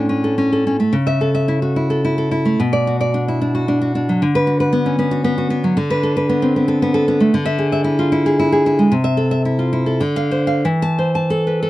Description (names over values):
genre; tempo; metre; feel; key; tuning
romantic piece for solo classical guitar; 88-120 BPM; 3/4; rubato; A minor from 5.8 s; A4 = 436 Hz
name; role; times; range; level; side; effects
nylon-string guitar; solo; 0.0-11.7 s; A2 to A5; -15 LUFS; equal; none
room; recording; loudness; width
light reverb; dry, close 1970s-style studio recording; -15 LUFS; side -16 dB against mid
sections
0.0-11.7 A section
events
none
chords
0.0 A; 0.9 A/C#; 2.6 Bm; 4.2 Bm/D; 5.8 Bm7/D; 7.3 E7/D; 8.9 Am/C; 10.0 Dm7; 10.7 Am/E